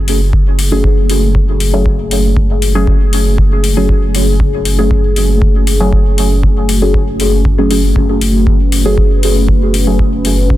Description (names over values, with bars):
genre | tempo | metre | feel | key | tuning
dub techno | 118 BPM | 4/4 | straight | F# minor | A4 = 445 Hz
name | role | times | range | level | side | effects
dark analog pad | sustained chords | 0.6-10.6 s | A3 to B4 | -18 LUFS | left 1 dB | chorus, sidechain pumping
soft dub sub bass | bass | 0.0-10.6 s | F#1 | -14 LUFS | equal | sidechain pumping
electronic hi-hat | drums | 0.1-10.4 s | none | -20 LUFS | left 5 dB | none
electronic kick drum | drums | 0.3-10.6 s | none | -13 LUFS | equal | none
deep mellow chord stab | stabs | 0.7-10.0 s | F#3 to G#4 | -17 LUFS | equal | chorus, phaser, sidechain pumping, dub echo
room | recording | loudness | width
digital ambience | dense, heavily limited modern master | -9 LUFS | side -14 dB against mid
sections
0.0-10.6 A section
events
none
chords
0.0 F#madd9